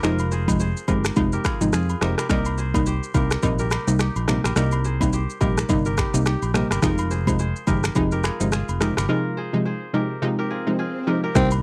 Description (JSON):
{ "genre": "afrobeats", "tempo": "106 BPM", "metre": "4/4", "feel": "swing 58% on 16ths", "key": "unclear", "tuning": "A4 = 439 Hz", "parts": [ { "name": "analog pluck", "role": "accompaniment", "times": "0.0-11.6 s", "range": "C3 to Eb4", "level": "-26 LUFS", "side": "equal", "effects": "chorus, cassette tape" }, { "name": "kora", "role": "riff", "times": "0.0-11.6 s", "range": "Eb4 to C5", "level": "-32 LUFS", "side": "equal", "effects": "cassette tape" }, { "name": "fingered electric bass", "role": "bass", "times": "0.0-11.6 s", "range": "F1 to F2", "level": "-27 LUFS", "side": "equal", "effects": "none" }, { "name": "afro-pop drum kit", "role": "drums", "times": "0.0-11.6 s", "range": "finger snaps, kick drum, rim click, shaker", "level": "-27 LUFS", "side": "equal", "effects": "none" }, { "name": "agogo bells", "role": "percussion", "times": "0.2-11.6 s", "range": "none", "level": "-36 LUFS", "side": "equal", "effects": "none" }, { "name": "swell and impact", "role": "sound effects", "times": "10.2-11.6 s", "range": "none", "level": "-36 LUFS", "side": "equal", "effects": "none" }, { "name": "growling tenor saxophone", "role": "melody", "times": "11.4-11.5 s", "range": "C4", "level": "-25 LUFS", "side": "equal", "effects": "cassette tape" } ], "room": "light reverb", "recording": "home recording on cassette", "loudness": "-22 LUFS", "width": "mono", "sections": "0.0-11.4 A section", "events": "swell 10.2-11.4; impact 11.4", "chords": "0.0 Fm7; 2.3 Cm7; 6.8 Fm7" }